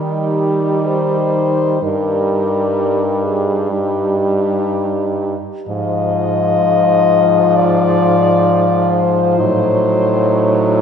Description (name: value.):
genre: classical, lyrical piece for horn quartet.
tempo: 55-66 BPM.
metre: 4/4.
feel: rubato.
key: Eb major.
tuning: A4 = 440 Hz.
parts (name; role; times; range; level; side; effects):
mellow French horn; melody; 0.0-10.8 s; G4 to Eb5; -17 LUFS; left 5 dB; none.
mellow French horn; second line; 0.0-10.8 s; Eb4 to F4; -20 LUFS; right 6 dB; none.
warm French horn; accompaniment; 0.0-10.8 s; F3 to G3; -19 LUFS; left 2 dB; none.
clear French horn; bass; 0.0-10.8 s; G2 to Eb3; -20 LUFS; right 2 dB; none.
room: wet concert hall reverb, RT60 2.2 s.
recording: heard from further back in the room.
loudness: -13 LUFS.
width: side -7 dB against mid.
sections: 0.0-10.8 A section.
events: none.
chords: 0.0 Eb; 1.8 Eb/G; 5.7 Fm7/Ab; 9.4 Adim7.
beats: 0.86 | 1.83 2.76 3.72 4.67 | 5.69 6.64 7.56 8.47 | 9.40 10.34.